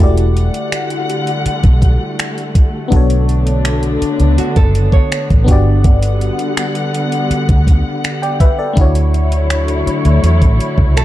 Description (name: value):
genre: contemporary R&B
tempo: 82 BPM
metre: 4/4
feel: straight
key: E dorian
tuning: A4 = 441 Hz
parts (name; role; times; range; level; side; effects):
- FM electric piano; accompaniment; 0.0-11.0 s; A3 to G5; -20 LUFS; left 3 dB; chorus, phaser
- muted studio string section; sustained chords; 0.0-11.0 s; D3 to F#5; -20 LUFS; left 1 dB; none
- nylon-string guitar; arpeggios; 0.0-5.5, 11.0 s; F#4 to C#5; -23 LUFS; right 8 dB; ping-pong delay
- vintage muted fingered electric bass; bass; 0.0-11.0 s; E1 to E2; -13 LUFS; equal; none
- smooth R&B drum kit; drums; 0.2-11.0 s; finger snaps, hi-hat, kick drum; -13 LUFS; equal; none
room: digital ambience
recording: dark, warm production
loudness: -11 LUFS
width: side -14 dB against mid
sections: 0.0-11.0 A section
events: none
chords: 0.0 Em11; 2.9 Bm9; 5.5 Gmaj7; 8.8 Dmaj9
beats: 0.72 1.46 2.19 | 2.92 3.65 4.38 5.11 | 5.85 6.58 7.31 8.04 | 8.77 9.50 10.24 10.97